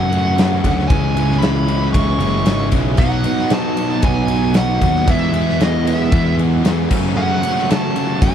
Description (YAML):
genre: classic rock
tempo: 115 BPM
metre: 4/4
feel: straight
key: F# dorian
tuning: A4 = 440 Hz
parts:
  - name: smooth overdriven lead guitar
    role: melody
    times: 0.0-8.3 s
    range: D#5 to C#6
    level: -22 LUFS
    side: right 3 dB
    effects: wah, slapback echo
  - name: picked old ladder-braced acoustic guitar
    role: accompaniment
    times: 0.0-8.3 s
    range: F#2 to G#4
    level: -30 LUFS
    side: left 1 dB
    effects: none
  - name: overdriven electric guitar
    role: riff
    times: 0.0-8.3 s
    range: F#2 to E4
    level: -24 LUFS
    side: left 1 dB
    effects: none
  - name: overdriven semi-hollow guitar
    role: riff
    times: 0.0-8.3 s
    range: E2 to G#4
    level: -23 LUFS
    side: right 11 dB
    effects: none
  - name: sludgy distorted guitar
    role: riff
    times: 0.0-8.3 s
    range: F#2 to E4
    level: -23 LUFS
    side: left 12 dB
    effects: overdrive
  - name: fuzz picked electric bass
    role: bass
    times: 0.0-8.3 s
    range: F#1 to F#2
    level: -19 LUFS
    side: equal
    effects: overdrive
  - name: huge arena drum kit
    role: drums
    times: 0.1-8.3 s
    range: crash cymbal, kick drum, ride cymbal, snare drum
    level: -19 LUFS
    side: equal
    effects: none
room: light reverb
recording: none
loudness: -14 LUFS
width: side -9 dB against mid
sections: 0.0-8.3 A section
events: none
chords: 0.0 F#madd9; 0.9 C#m; 3.0 Badd9; 5.1 E; 6.9 F#madd9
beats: 0.38 | 0.90 1.42 1.94 2.46 | 2.99 3.51 4.03 4.55 | 5.08 5.60 6.12 6.65 | 7.17 7.69 8.22